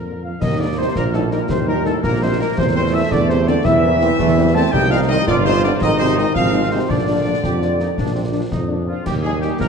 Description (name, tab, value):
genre	military-style march for wind band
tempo	111 BPM (dotted quarters)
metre	6/8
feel	straight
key	unclear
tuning	A4 = 438 Hz
part	clear woodwind section	second line	0.0-9.7 s	F4 to A5	-26 LUFS	left 2 dB	none
part	mellow euphonium	second line	0.0-9.7 s	A2 to Bb3	-23 LUFS	right 2 dB	none
part	clear tuba	bass	0.0-9.7 s	G1 to F2	-20 LUFS	right 3 dB	none
part	dark trumpet section	melody	0.1-9.7 s	F4 to A5	-25 LUFS	equal	none
part	mellow French horn section	accompaniment	0.1-9.5 s	D3 to Eb4	-26 LUFS	left 4 dB	none
part	mellow flute section	second line	0.2-9.7 s	A4 to Bb5	-25 LUFS	left 2 dB	none
part	bright trombone section	sustained chords	0.4-9.7 s	G3 to G4	-25 LUFS	right 1 dB	none
part	concert snare drum, clash cymbals and concert bass drum	drums	0.4-9.7 s	none	-24 LUFS	left 2 dB	none
room	wet scoring stage reverb, RT60 2.1 s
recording	dark, warm production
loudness	-15 LUFS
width	side -6 dB against mid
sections	0.4-9.1 A section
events	none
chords	0.4 Eb; 2.6 C7/E; 4.7 Cm; 5.8 Fm7/Ab; 6.9 Bb; 9.1 Eb